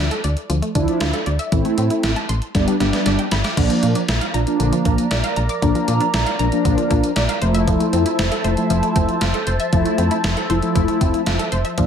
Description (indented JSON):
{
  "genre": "synth-pop",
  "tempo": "117 BPM",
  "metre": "4/4",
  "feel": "straight",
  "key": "unclear",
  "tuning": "A4 = 439 Hz",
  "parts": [
    { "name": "mellow synth brass", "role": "accompaniment", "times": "0.0-11.9 s", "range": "F3 to E4", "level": "-21 LUFS", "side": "equal", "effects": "chorus" },
    { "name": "solid FM bass", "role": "bass", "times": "0.0-11.9 s", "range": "F1 to Bb2", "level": "-21 LUFS", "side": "equal", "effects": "none" },
    { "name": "wide unison pluck", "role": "arpeggios", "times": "0.1-11.9 s", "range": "D3 to D6", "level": "-26 LUFS", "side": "moving between left 4 dB and right 2 dB", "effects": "auto-pan, digital delay" },
    { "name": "gated 80s digital drum machine", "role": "drums", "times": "0.1-11.9 s", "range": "crash cymbal, hi-hat, kick drum, snare drum", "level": "-22 LUFS", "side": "equal", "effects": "gated reverb, gated reverb snare" },
    { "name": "phased analog pad", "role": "sustained chords", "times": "3.6-11.9 s", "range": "F3 to Bb5", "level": "-25 LUFS", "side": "right 1 dB", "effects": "phaser, chorus" }
  ],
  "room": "light reverb",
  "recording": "none",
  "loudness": "-16 LUFS",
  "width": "side -8 dB against mid",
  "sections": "0.0-3.6 A section; 3.6-11.9 B section",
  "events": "drum fill 2.5-3.6",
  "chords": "0.0 Dmadd9; 1.5 Am; 2.5 G; 3.6 Bb; 7.4 Fmaj7"
}